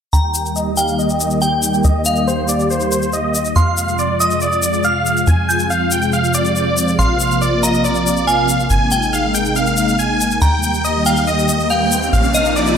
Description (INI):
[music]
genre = uplifting trance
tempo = 140 BPM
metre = 4/4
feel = straight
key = Eb major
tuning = A4 = 441 Hz
[part]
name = big supersaw lead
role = melody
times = 0.1-12.7 s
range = C5 to Ab5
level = -19 LUFS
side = equal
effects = low-pass filter, ping-pong delay
[part]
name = glassy synth bell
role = second line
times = 0.1-12.8 s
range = Eb5 to G6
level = -21 LUFS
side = right 1 dB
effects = chorus, tremolo, ping-pong delay
[part]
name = analog string pad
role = sustained chords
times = 0.1-12.8 s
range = C3 to G4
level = -19 LUFS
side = equal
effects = ensemble chorus
[part]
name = tight sequencer bass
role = bass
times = 0.1-12.8 s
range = Ab1 to F2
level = -21 LUFS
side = equal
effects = none
[part]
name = egg shaker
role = percussion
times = 0.1-12.8 s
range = none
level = -23 LUFS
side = left 4 dB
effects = none
[part]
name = riser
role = sound effects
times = 11.1-12.8 s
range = none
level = -23 LUFS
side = equal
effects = none
[sound]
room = moderate lush hall reverb, RT60 2.6 s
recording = none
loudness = -14 LUFS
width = side -7 dB against mid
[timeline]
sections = 0.1-12.8 A section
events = filter sweep on supersaw synth 0.1-12.8; riser 11.1-12.8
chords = 0.1 Eb; 3.6 Fm; 7.0 Bbsus2; 8.7 Abadd9; 10.4 Eb; 12.1 Bbsus2